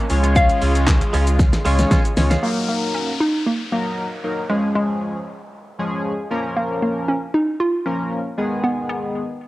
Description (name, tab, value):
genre	dance-pop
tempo	116 BPM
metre	4/4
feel	straight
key	Eb minor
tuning	A4 = 437 Hz
part	hollow square pluck	melody	0.0-9.5 s	Ab3 to F5	-21 LUFS	equal	chorus, cassette tape
part	filtered supersaw swell	sustained chords	0.0-2.4 s	Db3 to F4	-27 LUFS	equal	phaser, sidechain pumping, cassette tape
part	direct-recorded clean electric guitar	riff	0.0-2.5 s	Ab3 to F4	-27 LUFS	right 3 dB	lush chorus, cassette tape
part	chorused polysynth	accompaniment	0.1-9.2 s	Eb3 to Db5	-23 LUFS	left 1 dB	sidechain pumping, cassette tape
part	sub bass with octave	bass	0.1-2.4 s	Db2	-18 LUFS	equal	sidechain pumping
part	pop drum kit	drums	0.1-2.4 s	handclaps, hi-hat, kick drum, shaker, snare drum	-18 LUFS	equal	none
part	downlifter	sound effects	2.4-6.6 s	none	-32 LUFS	left 4 dB	none
room	light reverb, digital ambience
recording	home recording on cassette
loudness	-17 LUFS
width	side -17 dB against mid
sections	0.0-2.4 A section; 2.4-9.5 B section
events	drum fill 1.4-2.4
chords	0.1 Db; 2.4 Ebm; 4.5 Db; 6.3 Bbm; 8.4 Abm